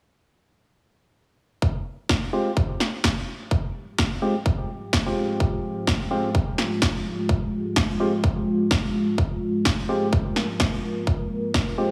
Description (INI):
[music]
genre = bass house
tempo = 127 BPM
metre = 4/4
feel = swing 58% on 16ths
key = F minor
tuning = A4 = 444 Hz
[part]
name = dark analog pad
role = sustained chords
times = 3.0-11.9 s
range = Ab3 to Bb4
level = -30 LUFS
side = equal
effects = chorus, sidechain pumping
[part]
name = electronic kick drum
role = drums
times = 1.6-11.7 s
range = none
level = -26 LUFS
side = equal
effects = none
[part]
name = electronic snare drum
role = drums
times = 2.1-11.7 s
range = none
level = -28 LUFS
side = equal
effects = none
[part]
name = percussive organ stab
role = stabs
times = 2.3-11.9 s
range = Ab3 to G4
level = -29 LUFS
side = equal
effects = chorus, sidechain pumping, digital delay
[sound]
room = light reverb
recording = small room ambience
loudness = -24 LUFS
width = mono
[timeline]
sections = 1.6-11.9 A section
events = filter sweep on analog synth pad 1.6-11.9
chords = 1.6 Fmadd9